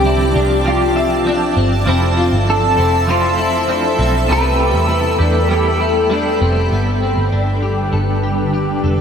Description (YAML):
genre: dream pop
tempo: 99 BPM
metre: 4/4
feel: straight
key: unclear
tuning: A4 = 440 Hz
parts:
  - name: electric guitar at the edge of break-up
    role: melody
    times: 0.0-6.1 s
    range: F4 to C5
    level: -19 LUFS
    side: left 1 dB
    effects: analog chorus, tape echo
  - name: clean electric guitar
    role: accompaniment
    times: 0.0-7.2 s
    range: G2 to A4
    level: -23 LUFS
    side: right 4 dB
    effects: tremolo, wide subtle chorus
  - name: granular cloud pad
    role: sustained chords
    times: 0.0-9.0 s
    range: D3 to E6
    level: -19 LUFS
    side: left 1 dB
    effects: built-in reverb
  - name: clean electric guitar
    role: arpeggios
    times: 0.0-9.0 s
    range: B3 to E5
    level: -22 LUFS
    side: left 2 dB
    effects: ensemble chorus, tape echo
  - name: vintage muted picked electric bass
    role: bass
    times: 0.0-9.0 s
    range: F1 to E2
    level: -18 LUFS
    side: equal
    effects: none
  - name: twinkling granular texture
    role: texture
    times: 1.1-3.7 s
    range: A4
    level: -31 LUFS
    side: right 2 dB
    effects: none
room: wet huge ambient reverb, RT60 8.7 s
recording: dreamy mix soaked in reverb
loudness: -13 LUFS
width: side -7 dB against mid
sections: 0.0-6.7 A section; 6.7-9.0 B section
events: none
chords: 0.0 Fmaj7; 6.7 G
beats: 0.05 0.66 1.26 | 1.87 2.48 3.08 3.69 | 4.30 4.90 5.51 6.11 | 6.72 7.33 7.93 8.54